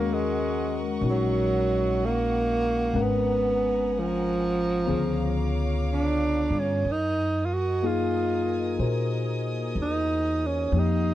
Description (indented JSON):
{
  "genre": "jazz ballad",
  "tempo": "62 BPM",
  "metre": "4/4",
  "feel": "swing 66% on 8ths",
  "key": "unclear",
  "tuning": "A4 = 444 Hz",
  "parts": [
    { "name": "breathy tenor saxophone", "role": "melody", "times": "0.0-11.1 s", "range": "F3 to Gb4", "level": "-26 LUFS", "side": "right 2 dB", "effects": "none" },
    { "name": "tine electric piano", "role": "accompaniment", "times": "0.0-11.1 s", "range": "D3 to Gb5", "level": "-29 LUFS", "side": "left 6 dB", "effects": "none" },
    { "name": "warm chamber string section", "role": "sustained chords", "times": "0.0-11.1 s", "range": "Bb4 to Eb6", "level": "-37 LUFS", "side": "right 2 dB", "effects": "none" },
    { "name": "upright bass", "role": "bass", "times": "0.0-11.1 s", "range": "Ab1 to Bb2", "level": "-29 LUFS", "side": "equal", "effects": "none" }
  ],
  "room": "light reverb",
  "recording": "dry, close 1970s-style studio recording",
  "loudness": "-23 LUFS",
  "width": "side -13 dB against mid",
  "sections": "0.0-11.1 A section",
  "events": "none",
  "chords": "0.0 Ebm7; 3.0 Abm9; 4.9 Db7b9; 6.8 Gb69"
}